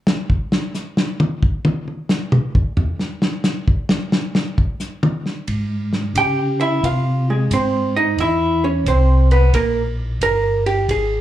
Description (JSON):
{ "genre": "soul jazz organ trio", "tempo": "89 BPM", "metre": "4/4", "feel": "swing 66% on 8ths", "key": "unclear", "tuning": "A4 = 440 Hz", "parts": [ { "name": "warm soul drum kit", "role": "drums", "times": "0.1-11.1 s", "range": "hi-hat, kick drum, ride cymbal, snare drum, toms", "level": "-19 LUFS", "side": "equal", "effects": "none" }, { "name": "mellow tonewheel organ", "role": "bass", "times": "5.5-11.2 s", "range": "G1 to Db3", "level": "-18 LUFS", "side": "equal", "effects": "chorus vibrato, slow rotary speaker" }, { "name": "vintage hollow-body jazz guitar", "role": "accompaniment", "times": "6.2-11.2 s", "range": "Ab3 to G5", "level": "-18 LUFS", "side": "right 2 dB", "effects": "slapback echo" } ], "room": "moderate club reverb, RT60 0.7 s", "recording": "live gig heard through the venue's PA, club reverb", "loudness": "-16 LUFS", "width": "side -12 dB against mid", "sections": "0.0-11.2 A section", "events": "hollow-body jazz guitar solo 0.0-11.2; drum solo 0.0-5.5", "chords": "0.0 N.C.; 5.5 Dbmaj7; 8.2 C7b9", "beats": "| 0.07 0.74 1.42 2.10 | 2.77 3.45 4.12 4.80 | 5.48 6.15 6.83 7.51 | 8.18 8.86 9.54 10.21 | 10.89" }